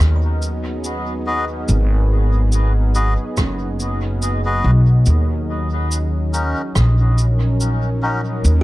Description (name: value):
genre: ambient dub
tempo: 71 BPM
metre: 4/4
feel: swing 55% on 16ths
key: G# minor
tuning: A4 = 440 Hz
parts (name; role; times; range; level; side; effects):
- warm analog pad; sustained chords; 0.0-8.6 s; F#3 to D#5; -26 LUFS; equal; chorus
- kalimba; arpeggios; 0.0-1.1, 8.6 s; C#6; -34 LUFS; left 2 dB; vintage 12-bit sampler grit, dub echo
- upright bass; bass; 0.0-8.6 s; F#1 to D#2; -16 LUFS; equal; none
- electronic kick drum; drums; 0.0-6.9 s; none; -20 LUFS; equal; none
- rim click and cabasa; drums; 0.0-8.6 s; none; -28 LUFS; right 1 dB; dub echo
- melodica; stabs; 1.3-8.2 s; C#4 to D#5; -26 LUFS; left 2 dB; dub echo
room: little or no reverb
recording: echo-heavy mix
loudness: -15 LUFS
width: side -18 dB against mid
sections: 0.0-8.6 A section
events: none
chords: 0.0 G#m7; 5.1 D#m7